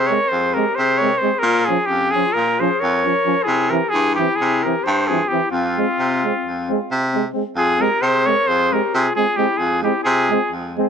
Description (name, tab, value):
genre	balkan folk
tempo	264 BPM (eighths)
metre	9/8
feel	straight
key	F harmonic minor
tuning	A4 = 441 Hz
part	clear cornet	melody	0.0-10.5 s	F4 to Db5	-18 LUFS	right 1 dB	none
part	dark clarinet	second line	0.0-10.6 s	C4 to Bb4	-25 LUFS	left 12 dB	none
part	warm baritone saxophone	bass	0.0-10.8 s	F2 to C3	-21 LUFS	right 1 dB	none
part	warm euphonium	accompaniment	0.1-10.9 s	E3 to Ab3	-25 LUFS	right 13 dB	none
part	warm trombone	accompaniment	0.1-10.9 s	C4 to Db4	-27 LUFS	left 13 dB	none
room	light reverb, studio ambience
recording	1960s-style stereo with parts hard left and right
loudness	-16 LUFS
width	side -7 dB against mid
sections	0.0-7.5 A section; 7.5-10.9 B section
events	none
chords	0.0 Fm; 1.4 Bbm; 3.5 C; 5.5 Fm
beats	0.06 0.29 0.51 0.74 0.97 1.20 | 1.42 1.65 1.88 2.10 2.33 2.56 2.79 3.01 3.24 | 3.47 3.69 3.92 4.15 4.37 4.60 4.83 5.05 5.28 | 5.51 5.74 5.96 6.19 6.42 6.64 6.87 7.10 7.32 | 7.55 7.78 8.00 8.23 8.46 8.68 8.91 9.13 9.36 | 9.59 9.81 10.04 10.26 10.49 10.71